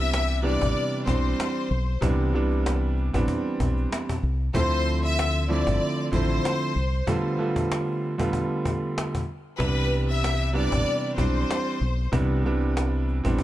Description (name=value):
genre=hip hop, boom-bap hip-hop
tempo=95 BPM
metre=4/4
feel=swing 54% on 16ths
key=C major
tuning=A4 = 440 Hz
part: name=clear studio violin section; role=melody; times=0.0-12.1 s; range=B4 to E5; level=-29 LUFS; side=left 2 dB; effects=digital delay
part: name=clear upright piano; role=accompaniment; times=0.0-13.4 s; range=C3 to F4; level=-26 LUFS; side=right 2 dB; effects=cassette tape
part: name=deep dub fingered electric bass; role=bass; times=0.0-13.4 s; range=G1 to D2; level=-25 LUFS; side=equal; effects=none
part: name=cajon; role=drums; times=0.1-13.4 s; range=none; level=-30 LUFS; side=left 1 dB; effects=vintage 12-bit sampler grit
room=small room ambience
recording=none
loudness=-22 LUFS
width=side -14 dB against mid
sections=0.0-13.4 A section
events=break 7.1-9.6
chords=0.0 Cmaj9; 4.5 Dm9; 7.1 G9/D; 9.6 Cmaj9